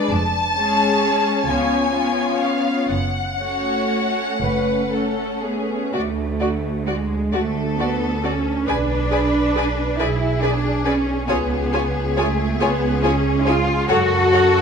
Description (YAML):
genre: classical, slow romantic movement for string orchestra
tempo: 38-47 BPM (dotted quarters)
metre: 6/8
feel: rubato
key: F# minor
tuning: A4 = 440 Hz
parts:
  - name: clear symphonic violin section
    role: melody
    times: 0.0-14.6 s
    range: G#4 to A5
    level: -24 LUFS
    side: left 3 dB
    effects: none
  - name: warm symphonic violin section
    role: second line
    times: 0.0-14.4 s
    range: E#4 to G#5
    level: -25 LUFS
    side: left 3 dB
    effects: none
  - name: rich symphonic viola section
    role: accompaniment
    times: 0.0-14.4 s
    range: G#3 to B4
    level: -24 LUFS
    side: equal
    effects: none
  - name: clear symphonic double bass section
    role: bass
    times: 0.1-14.6 s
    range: E#1 to F#2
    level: -24 LUFS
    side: right 3 dB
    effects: none
  - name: rich symphonic cello section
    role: bass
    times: 0.1-14.6 s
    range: C#2 to F#4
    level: -22 LUFS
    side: right 1 dB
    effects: none
room: moderate scoring stage reverb, RT60 2.0 s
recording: none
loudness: -18 LUFS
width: side -6 dB against mid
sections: 0.0-5.9 A section; 5.9-14.6 B section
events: none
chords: 0.1 C#/E#; 1.5 C#7; 2.9 F#m; 5.9 D; 8.7 G#dim/B; 11.3 C#; 13.9 F#m